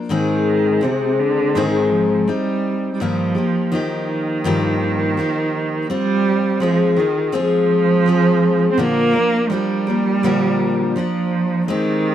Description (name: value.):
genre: acoustic folk duo or small band.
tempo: 83 BPM.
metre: 4/4.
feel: straight.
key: unclear.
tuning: A4 = 444 Hz.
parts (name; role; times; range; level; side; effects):
picked steel-string acoustic guitar; accompaniment; 0.0-12.1 s; G2 to Bb4; -19 LUFS; left 4 dB; none.
warm cello; second line; 0.1-12.1 s; C3 to C4; -18 LUFS; right 4 dB; none.
room: small room ambience.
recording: dry, close 1970s-style studio recording.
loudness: -16 LUFS.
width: side -10 dB against mid.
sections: 0.1-12.1 A section.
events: none.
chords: 0.1 Ab; 3.0 Ebadd9/G; 5.9 Fm; 8.8 Bb.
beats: | 0.11 0.83 1.56 2.28 | 3.00 3.73 4.45 5.17 | 5.89 6.62 7.34 8.07 | 8.79 9.51 10.24 10.96 | 11.69.